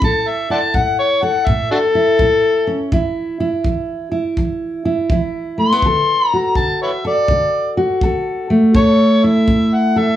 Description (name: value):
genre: acoustic country blues, solo or duo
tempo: 82 BPM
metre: 4/4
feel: swing 64% on 8ths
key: A major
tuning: A4 = 445 Hz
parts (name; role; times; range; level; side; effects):
- overdriven harmonica; melody; 0.0-10.2 s; D4 to C6; -15 LUFS; left 2 dB; none
- fingerpicked steel-string acoustic guitar; accompaniment; 0.0-10.2 s; A2 to A4; -16 LUFS; equal; none
- kick drum; drums; 0.0-9.7 s; none; -20 LUFS; equal; none
room: light reverb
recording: small room ambience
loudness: -13 LUFS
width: side -12 dB against mid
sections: 0.0-10.2 A section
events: harmonica solo 0.0-10.2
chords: 0.0 A5; 2.9 E5; 5.8 D; 8.8 A